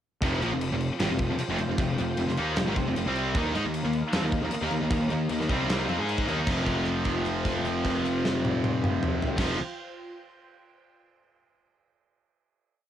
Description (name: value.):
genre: hard rock.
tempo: 153 BPM.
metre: 4/4.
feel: straight.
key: F minor.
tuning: A4 = 440 Hz.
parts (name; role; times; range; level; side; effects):
lush unison pad; sustained chords; 0.9-9.5 s; Eb4 to G5; -37 LUFS; equal; chorus, phaser.
sludgy distorted guitar; riff; 0.2-9.6 s; F2 to Ab4; -35 LUFS; right 1 dB; none.
tight distorted guitar; riff; 0.2-9.6 s; F2 to Ab4; -31 LUFS; left 7 dB; distortion.
tight distorted guitar; riff; 0.2-9.6 s; F2 to Ab4; -33 LUFS; right 10 dB; distortion.
fuzz picked electric bass; bass; 0.2-9.5 s; F1 to Ab2; -31 LUFS; equal; overdrive.
gated 80s drum kit; drums; 0.2-9.5 s; crash cymbal, kick drum, snare drum, toms; -30 LUFS; equal; cassette tape.
room: light reverb.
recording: home recording on cassette.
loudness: -25 LUFS.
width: side -10 dB against mid.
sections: 0.2-6.5 riff; 6.5-9.6 final chord.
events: held note 6.5-9.4.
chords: 0.2 Fm; 3.4 Eb5; 6.5 F5.